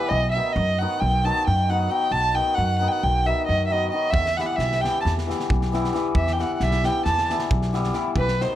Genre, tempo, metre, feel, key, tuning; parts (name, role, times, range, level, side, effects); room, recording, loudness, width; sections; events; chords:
balkan folk, Balkan wedding band; 268 BPM (eighths); 9/8; straight; E harmonic minor; A4 = 442 Hz
dark violin; melody; 0.0-8.6 s; B4 to A5; -23 LUFS; right 1 dB; plate reverb
hammered dulcimer; accompaniment; 0.0-8.6 s; D#3 to E4; -27 LUFS; left 4 dB
upright bass; bass; 0.1-8.4 s; B1 to F#2; -24 LUFS; equal
loose indie drum kit; percussion; 4.1-8.5 s; kick drum, snare drum; -29 LUFS; right 2 dB
moderate small room reverb, RT60 0.5 s; -20 LUFS; side -12 dB against mid
0.0-8.6 A section
0.1 B; 4.1 Em